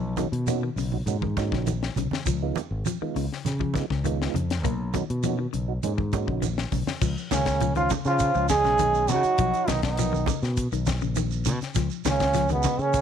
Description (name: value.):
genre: afrobeat.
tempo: 101 BPM.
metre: 4/4.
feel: straight.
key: Db mixolydian.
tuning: A4 = 440 Hz.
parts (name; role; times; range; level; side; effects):
semi-hollow electric guitar; arpeggios; 0.0-12.9 s; Db3 to Bb3; -32 LUFS; left 14 dB; none.
fingered electric bass; bass; 0.0-13.0 s; Ab1 to Db3; -28 LUFS; equal; none.
percussive tonewheel organ; accompaniment; 0.2-6.5 s; Ab3 to Ab4; -33 LUFS; right 14 dB; slow rotary speaker, chorus vibrato.
tight funk drum kit; drums; 0.2-13.0 s; crash cymbal, hi-hat, kick drum, snare drum; -30 LUFS; left 4 dB; none.
congas; percussion; 0.2-12.8 s; none; -32 LUFS; right 7 dB; none.
shekere; percussion; 0.2-13.0 s; none; -35 LUFS; right 8 dB; none.
bright trombone; melody; 7.3-13.0 s; Cb4 to Ab4; -24 LUFS; right 1 dB; none.
muted trombone section; second line; 7.3-13.0 s; Cb3 to Ab3; -31 LUFS; right 13 dB; none.
warm trombone; second line; 7.3-13.0 s; Ab3 to Eb4; -36 LUFS; right 14 dB; none.
room: little or no reverb.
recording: 1960s-style stereo with parts hard left and right.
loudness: -23 LUFS.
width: side -8 dB against mid.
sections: 0.0-7.0 A section; 7.0-13.0 B section.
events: none.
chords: 0.0 Cbmaj7; 2.3 Db7; 4.6 Cbmaj7; 7.0 Db7; 9.4 Cbmaj7; 11.8 Db7.